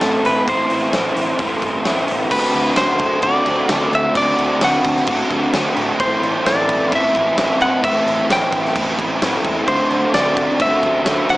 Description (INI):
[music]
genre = rock, shoegaze and dream pop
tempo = 130 BPM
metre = 4/4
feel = straight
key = D mixolydian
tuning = A4 = 439 Hz
[part]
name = direct-recorded clean electric guitar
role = melody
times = 0.0-11.4 s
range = A4 to G5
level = -18 LUFS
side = equal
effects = slapback echo
[part]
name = crunchy overdriven guitar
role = riff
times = 0.0-11.4 s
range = A2 to F#4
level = -18 LUFS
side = equal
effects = analog chorus
[part]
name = vintage muted fingered electric bass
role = bass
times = 0.0-11.4 s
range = E1 to D3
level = -35 LUFS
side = equal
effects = none
[part]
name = huge arena drum kit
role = drums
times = 0.0-11.4 s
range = crash cymbal, hi-hat, kick drum, snare drum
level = -23 LUFS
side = equal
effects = none
[sound]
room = moderate plate reverb, RT60 1.7 s, small room ambience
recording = small speaker sound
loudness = -15 LUFS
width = side -18 dB against mid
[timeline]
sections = 0.0-2.3 A section; 2.3-11.4 B section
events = none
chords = 0.0 Am; 2.3 D7; 6.0 Am; 9.7 D7